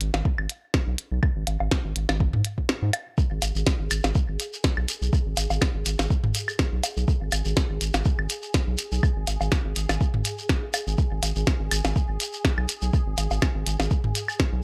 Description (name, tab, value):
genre	minimal techno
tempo	123 BPM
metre	4/4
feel	swing 54% on 16ths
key	G# minor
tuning	A4 = 440 Hz
part	round analog bass	bass	0.0-14.6 s	G#1 to G#2	-29 LUFS	equal	sidechain pumping
part	minimal click drum kit	drums	0.0-14.5 s	hi-hat, snare drum	-30 LUFS	equal	none
part	electronic woodblock and toms	percussion	0.1-14.4 s	none	-31 LUFS	equal	none
part	electronic kick drum	drums	0.3-14.5 s	none	-26 LUFS	equal	none
part	shekere	percussion	3.2-14.5 s	none	-35 LUFS	equal	none
part	bubbling stepped-filter texture	texture	3.2-14.6 s	G#4	-41 LUFS	equal	chorus, built-in reverb, sidechain pumping
room	little or no reverb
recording	none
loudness	-25 LUFS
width	mono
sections	0.0-14.6 A section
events	kick drops out 2.7-3.2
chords	none